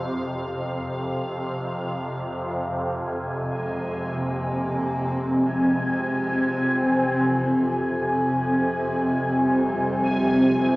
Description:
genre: dark ambient drone.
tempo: free time.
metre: none.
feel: none.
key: F harmonic minor.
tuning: A4 = 441 Hz.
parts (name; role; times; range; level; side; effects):
swarming drone; drone; 0.0-10.8 s; F2 to C3; -26 LUFS; equal; built-in reverb.
bubbling stepped-filter texture; texture; 0.0-10.8 s; F5 to Ab5; -29 LUFS; left 1 dB; chorus, built-in reverb.
sweeping resonant pad; sustained chords; 2.9-10.8 s; C3 to C4; -23 LUFS; equal; chorus.
dark cello; melody; 3.5-10.8 s; E3 to Bb3; -36 LUFS; equal; analog delay.
room: wet lush hall reverb, RT60 2.7 s.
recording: dreamy mix soaked in reverb, small speaker sound.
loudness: -22 LUFS.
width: side -21 dB against mid.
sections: 0.0-2.9 A section; 2.9-10.8 B section.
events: fade-in on cello 2.9-10.8.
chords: 0.0 F5; 2.9 Fm.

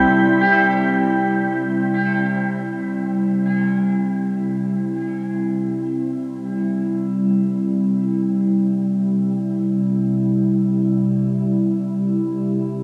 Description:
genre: ambient.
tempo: free time.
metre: none.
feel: none.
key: C major.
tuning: A4 = 440 Hz.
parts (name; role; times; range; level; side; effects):
warbly tape-like pad; sustained chords; 0.0-12.8 s; C3 to E4; -20 LUFS; equal; chorus, built-in reverb, shimmer reverb.
clean electric guitar; arpeggios; 0.0-0.6 s; G4; -24 LUFS; equal; spring reverb, tape echo, shimmer reverb.
room: wet huge ambient reverb, RT60 7.9 s.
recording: none.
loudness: -20 LUFS.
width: mono.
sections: 0.1-12.8 A section.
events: filter sweep on ambient pad 0.1-12.8.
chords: 0.1 C.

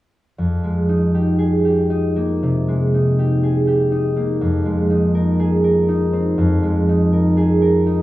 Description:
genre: classical.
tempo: 60 BPM.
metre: 4/4.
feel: rubato.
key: F minor.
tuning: A4 = 440 Hz.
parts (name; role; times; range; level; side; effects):
concert harp; accompaniment; 0.4-8.0 s; F2 to Bb4; -15 LUFS; equal; none.
room: wet recital hall reverb, RT60 1.4 s.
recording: recorded in a church or concert hall.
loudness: -15 LUFS.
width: side -16 dB against mid.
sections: 0.4-8.0 A section.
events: none.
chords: 0.4 Fm11; 4.4 Abadd9/F.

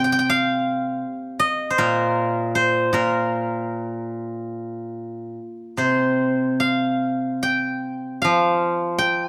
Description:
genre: chinese traditional, Chinese solo plucked strings.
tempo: 70-81 BPM.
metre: 4/4.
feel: rubato.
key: C yu mode.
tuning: A4 = 437 Hz.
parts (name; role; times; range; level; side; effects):
steel-string zither; solo; 0.0-9.3 s; Bb2 to G5; -22 LUFS; equal; none.
room: light reverb.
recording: close, detailed microphones.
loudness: -22 LUFS.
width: mono.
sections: 0.0-9.3 A section.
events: none.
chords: none.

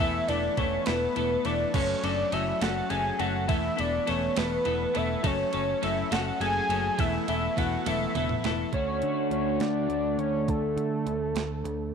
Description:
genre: indie rock.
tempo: 69 BPM (dotted quarters).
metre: 6/8.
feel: straight.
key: unclear.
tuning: A4 = 440 Hz.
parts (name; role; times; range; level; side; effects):
fat analog lead; melody; 0.0-11.9 s; A4 to G#5; -29 LUFS; equal; tape echo.
crunchy overdriven guitar; riff; 0.0-11.9 s; D3 to A4; -33 LUFS; right 17 dB; analog chorus.
overdriven semi-hollow guitar; riff; 0.0-11.9 s; E3 to A4; -31 LUFS; left 17 dB; none.
picked electric bass; bass; 0.0-11.9 s; E1 to D3; -34 LUFS; right 1 dB; none.
clean 12-bit digital drum machine; drums; 0.3-11.8 s; crash cymbal, hi-hat, kick drum, ride cymbal, snare drum, toms; -34 LUFS; right 4 dB; overdrive.
room: light reverb.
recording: 1960s-style stereo with parts hard left and right.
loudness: -25 LUFS.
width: side -6 dB against mid.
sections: 0.0-8.7 A section; 8.7-11.9 B section.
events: drum fill 7.9-8.7.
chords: 0.0 Esus4; 1.7 F#m; 3.5 Esus4; 5.2 F#madd9; 7.0 Esus4; 8.7 Dmaj7.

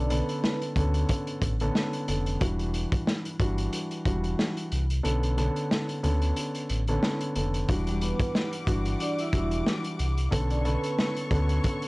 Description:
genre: hip hop, boom-bap hip-hop.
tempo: 91 BPM.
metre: 4/4.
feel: swing 56% on 16ths.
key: E dorian.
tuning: A4 = 440 Hz.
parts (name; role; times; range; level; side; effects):
vibraphone with soft mallets; melody; 0.0-0.6, 7.9-11.1 s; G3 to E5; -34 LUFS; right 1 dB; tape echo.
dark grand piano; accompaniment; 0.0-11.9 s; D3 to A4; -30 LUFS; equal; cassette tape.
sub bass with octave; bass; 0.0-11.6 s; E1 to D2; -27 LUFS; equal; transformer saturation.
vintage drum kit; drums; 0.1-11.9 s; hi-hat, kick drum, snare drum; -29 LUFS; equal; none.
warm symphonic string section; sustained chords; 7.7-11.9 s; G3 to D6; -38 LUFS; left 2 dB; none.
room: little or no reverb.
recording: dry, gritty hardware recording, transformer saturation, cassette tape.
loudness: -25 LUFS.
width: side -24 dB against mid.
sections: 0.0-11.9 A section.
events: kick muted 5.0-7.7.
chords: 0.0 Bm9; 2.4 Em9; 5.0 Bm9; 7.7 Em9; 10.3 Bm9.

